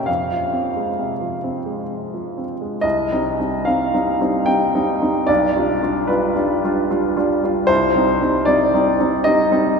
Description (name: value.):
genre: classical, romantic character piece for solo piano.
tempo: 62-78 BPM.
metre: 3/4.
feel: rubato.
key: C minor.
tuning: A4 = 440 Hz.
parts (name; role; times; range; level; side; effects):
warm grand piano; solo; 0.0-9.8 s; B1 to G5; -16 LUFS; equal; none.
room: wet cathedral reverb, RT60 5.0 s.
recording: minimal, uncompressed stereo recording.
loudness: -16 LUFS.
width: side -5 dB against mid.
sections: 0.0-2.8 A section; 2.8-9.8 B section.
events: none.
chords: 0.1 Fm; 2.8 Cm; 5.3 G7/B; 7.7 Cm.